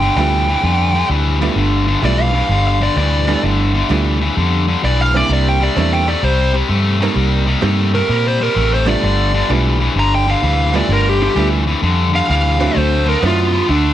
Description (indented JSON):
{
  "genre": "blues",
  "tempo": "129 BPM",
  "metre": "4/4",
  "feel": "swing 66% on 8ths",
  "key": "G mixolydian",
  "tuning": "A4 = 441 Hz",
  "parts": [
    { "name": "smooth overdriven lead guitar", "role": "melody", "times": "0.0-13.9 s", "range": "D4 to Bb5", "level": "-18 LUFS", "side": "right 1 dB", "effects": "none" },
    { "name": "overdriven electric guitar", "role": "riff", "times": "0.0-13.9 s", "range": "G2 to B3", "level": "-18 LUFS", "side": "left 4 dB", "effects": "none" },
    { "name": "vintage muted fingered electric bass", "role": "bass", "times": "0.0-13.9 s", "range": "G1 to Bb2", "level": "-16 LUFS", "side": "equal", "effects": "none" },
    { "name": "tack piano", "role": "accompaniment", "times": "0.2-13.5 s", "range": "F#3 to Bb4", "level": "-20 LUFS", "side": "right 5 dB", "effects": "none" }
  ],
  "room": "light reverb",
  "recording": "none",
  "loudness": "-13 LUFS",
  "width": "side -12 dB against mid",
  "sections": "0.0-13.9 A section",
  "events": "lead electric guitar solo 0.0-13.9",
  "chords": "0.0 G9; 5.3 C9; 7.2 Cm7; 9.0 G9; 12.8 D9"
}